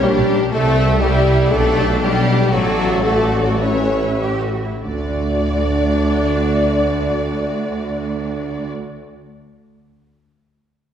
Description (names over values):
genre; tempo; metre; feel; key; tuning
cinematic, heroic adventure film score; 94-123 BPM (dotted quarters); 12/8; straight; D major; A4 = 436 Hz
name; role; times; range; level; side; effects
warm symphonic violin section; melody; 0.0-8.7 s; F#4 to D5; -27 LUFS; left 4 dB; none
clear studio violin section; second line; 0.0-8.7 s; F#4 to D5; -26 LUFS; left 2 dB; none
clear symphonic viola section; accompaniment; 0.0-8.7 s; Bb3 to E5; -27 LUFS; equal; none
mellow French horn section; sustained chords; 0.0-8.7 s; F#3 to D4; -20 LUFS; left 1 dB; none
clear symphonic double bass section; bass; 0.0-8.7 s; A1 to D2; -21 LUFS; right 1 dB; none
rich symphonic cello section; bass; 0.0-8.7 s; D2 to A4; -25 LUFS; right 2 dB; none
warm tuba; bass; 0.0-8.7 s; A1 to D2; -23 LUFS; right 2 dB; none
room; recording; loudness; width
wet scoring stage reverb, RT60 2.0 s; heard from further back in the room; -15 LUFS; side -9 dB against mid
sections
0.0-4.8 A section; 4.8-9.8 B section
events
slowing down 1.2-4.8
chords
0.0 Gm/Bb; 0.5 C; 1.5 G/B; 2.5 D/A; 3.6 Aadd9; 4.8 D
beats
0.03 | 0.52 1.01 1.50 2.00 | 2.51 3.05 3.62 4.22 | 4.84 5.46 6.08 6.70 | 7.33 7.95 8.57